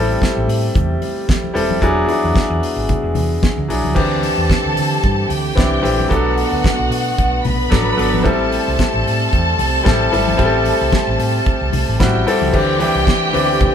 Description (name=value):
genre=disco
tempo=112 BPM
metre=4/4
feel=swing 56% on 16ths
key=A dorian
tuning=A4 = 440 Hz
part: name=clear baby grand piano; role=accompaniment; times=0.0-13.7 s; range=E3 to A4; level=-18 LUFS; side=left 2 dB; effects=none
part: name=mellow French horn section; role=sustained chords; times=0.0-13.7 s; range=D3 to G#4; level=-25 LUFS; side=right 1 dB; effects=none
part: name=hollow-body short-scale fingered electric bass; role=bass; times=0.0-13.7 s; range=D#1 to D3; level=-21 LUFS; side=right 1 dB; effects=none
part: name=damped 70s drum kit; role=drums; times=0.2-13.7 s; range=crash cymbal, hi-hat, kick drum, snare drum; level=-20 LUFS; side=right 1 dB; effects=none
part: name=congas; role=percussion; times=0.2-13.7 s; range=none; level=-26 LUFS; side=left 3 dB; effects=none
part: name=clear studio string section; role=second line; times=4.0-13.7 s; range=F#4 to B5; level=-20 LUFS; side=equal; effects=none
room=moderate large studio reverb, RT60 1.3 s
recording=band playing live in one room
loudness=-14 LUFS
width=side -8 dB against mid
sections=0.0-4.0 A section; 4.0-12.5 B section; 12.5-13.7 C section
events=none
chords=0.0 Am7; 1.8 E9; 4.0 D9sus4; 6.1 Bm7; 8.2 Am7; 12.5 D9sus4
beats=0.21 0.75 1.29 | 1.82 2.36 2.89 3.43 | 3.96 4.50 5.04 5.57 | 6.11 6.64 7.18 7.71 | 8.25 8.79 9.32 9.86 | 10.39 10.93 11.46 12.00 | 12.53 13.07 13.60